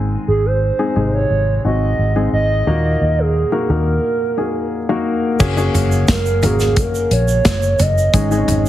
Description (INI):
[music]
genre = piano-driven pop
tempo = 88 BPM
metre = 4/4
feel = straight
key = unclear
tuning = A4 = 440 Hz
[part]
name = warm baby grand piano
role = accompaniment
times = 0.0-8.7 s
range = Ab2 to Bb4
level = -20 LUFS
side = left 3 dB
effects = none
[part]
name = vintage muted fingered electric bass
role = bass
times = 0.0-8.7 s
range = Gb1 to Eb2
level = -17 LUFS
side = equal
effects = none
[part]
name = hollow clarinet-like synth lead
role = melody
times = 0.3-8.7 s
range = Ab4 to Eb5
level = -19 LUFS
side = right 3 dB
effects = chorus
[part]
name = modern studio drum kit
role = drums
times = 5.4-8.6 s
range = crash cymbal, hi-hat, kick drum, snare drum, toms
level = -18 LUFS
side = equal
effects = none
[part]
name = egg shaker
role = percussion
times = 5.4-8.7 s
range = none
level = -32 LUFS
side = right 8 dB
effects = none
[sound]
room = moderate large studio reverb, RT60 1.0 s, studio ambience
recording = heavily compressed radio sound, multiband compression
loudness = -14 LUFS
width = side -13 dB against mid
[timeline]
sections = 0.0-5.4 A section; 5.4-8.7 B section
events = break 4.0-5.4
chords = 0.0 Ab; 2.7 Ebm; 5.4 Gbadd9; 8.1 Absus4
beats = 0.62 1.30 1.99 | 2.67 3.35 4.04 4.72 | 5.40 6.09 6.77 7.45 | 8.14